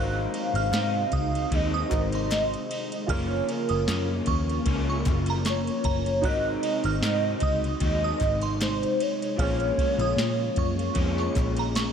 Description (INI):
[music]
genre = indie pop, bedroom pop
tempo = 76 BPM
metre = 4/4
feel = swing 55% on 16ths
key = unclear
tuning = A4 = 439 Hz
[part]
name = hollow clarinet-like synth lead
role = melody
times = 0.0-11.9 s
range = Bb4 to F5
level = -29 LUFS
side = equal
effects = phaser, analog chorus, ping-pong delay
[part]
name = glassy synth bell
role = second line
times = 0.0-11.9 s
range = Bb5 to Gb6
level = -36 LUFS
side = right 8 dB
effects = tremolo, analog chorus, ping-pong delay
[part]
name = electric guitar through a small old amp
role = accompaniment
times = 0.0-11.9 s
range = Gb2 to Eb4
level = -31 LUFS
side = left 2 dB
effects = analog chorus, warbly pitch drift
[part]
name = warm upright piano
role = accompaniment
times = 0.0-11.9 s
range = C4 to Eb5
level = -37 LUFS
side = right 3 dB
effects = cassette tape
[part]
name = soft string machine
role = sustained chords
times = 0.0-11.9 s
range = C3 to F4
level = -35 LUFS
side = equal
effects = ensemble chorus
[part]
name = vintage muted picked electric bass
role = bass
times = 0.0-11.9 s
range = Gb1 to Bb2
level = -29 LUFS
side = equal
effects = none
[part]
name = soft vintage rhythm box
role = drums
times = 0.3-11.9 s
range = kick drum, ride cymbal, snare drum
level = -30 LUFS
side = equal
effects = none
[part]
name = group handclap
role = percussion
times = 0.7-11.9 s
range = none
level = -41 LUFS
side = left 5 dB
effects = none
[sound]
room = little or no reverb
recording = none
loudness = -23 LUFS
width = side -7 dB against mid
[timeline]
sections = 0.0-11.9 A section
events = none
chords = 0.0 Ab7; 3.1 Gbmaj7; 6.2 Ab7; 9.4 Bbm7